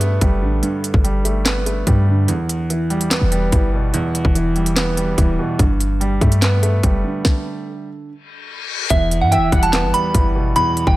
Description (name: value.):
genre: hip hop, trap.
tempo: 145 BPM.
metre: 4/4.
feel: half-time.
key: E minor.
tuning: A4 = 439 Hz.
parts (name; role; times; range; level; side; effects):
warm concert grand piano; accompaniment; 0.0-11.0 s; E2 to B3; -20 LUFS; right 2 dB; none.
clean 808-style bass; bass; 0.0-11.0 s; D1 to G2; -18 LUFS; equal; none.
trap drum kit; drums; 0.0-11.0 s; handclaps, hi-hat, kick drum, snare drum; -18 LUFS; equal; none.
reverse cymbal; sound effects; 8.3-8.9 s; none; -26 LUFS; left 9 dB; none.
delicate synth tine bell; melody; 8.9-11.0 s; E5 to B5; -18 LUFS; right 1 dB; chorus.
warm velvety synth lead; second line; 9.3-9.7 s; E5 to F#5; -25 LUFS; right 1 dB; chorus, digital delay.
room: digital ambience.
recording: none.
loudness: -15 LUFS.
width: side -17 dB against mid.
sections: 0.0-8.9 A section; 8.9-11.0 B section.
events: break 2.3-3.1; stop 7.2-8.9; reverse cymbal 8.3-8.9.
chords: 0.0 Gadd9; 2.3 Em; 5.6 Gadd9; 8.9 Em.